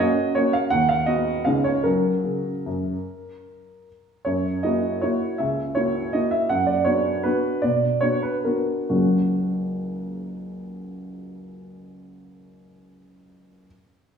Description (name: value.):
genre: classical, piano waltz.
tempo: 127-172 BPM.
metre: 3/4.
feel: rubato.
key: F# major.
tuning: A4 = 441 Hz.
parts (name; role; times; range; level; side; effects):
warm baby grand piano; solo; 0.0-13.7 s; F#1 to F#5; -21 LUFS; right 1 dB; none.
room: wet recital hall reverb, RT60 1.4 s.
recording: recorded in a church or concert hall, small room ambience.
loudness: -20 LUFS.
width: side -7 dB against mid.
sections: 0.0-4.3 A section; 4.3-8.9 B section; 8.9-11.5 C section.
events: slowing down 5.9-8.9.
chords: 0.0 F#; 0.7 B/D#; 1.5 C#9; 1.8 F#; 4.3 F#7; 6.5 Bm/F#; 8.9 F#.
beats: 0.36 | 0.72 1.08 1.46 | 1.85 2.25 2.66 | 3.06 3.46 3.87 | 4.26 4.64 5.03 | 5.40 5.76 6.13 | 6.49 6.86 7.25 | 7.63 8.03 8.46 | 8.91 9.34 9.78 | 10.21 10.64 11.08.